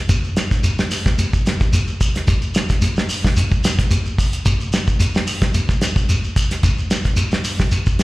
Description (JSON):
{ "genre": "afrobeat", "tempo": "110 BPM", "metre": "4/4", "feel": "swing 53% on 16ths", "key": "none", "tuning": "none", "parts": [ { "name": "damped 70s drum kit", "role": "drums", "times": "0.1-8.0 s", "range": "hi-hat, kick drum, snare drum", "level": "-18 LUFS", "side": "equal", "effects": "none" }, { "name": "shekere", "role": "percussion", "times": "0.1-8.0 s", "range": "none", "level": "-20 LUFS", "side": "equal", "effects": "slapback echo" } ], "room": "light reverb", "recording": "live gig heard through the venue's PA, recital hall reverb", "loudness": "-16 LUFS", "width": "side -20 dB against mid", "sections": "0.0-8.0 A section", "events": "none", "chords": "none" }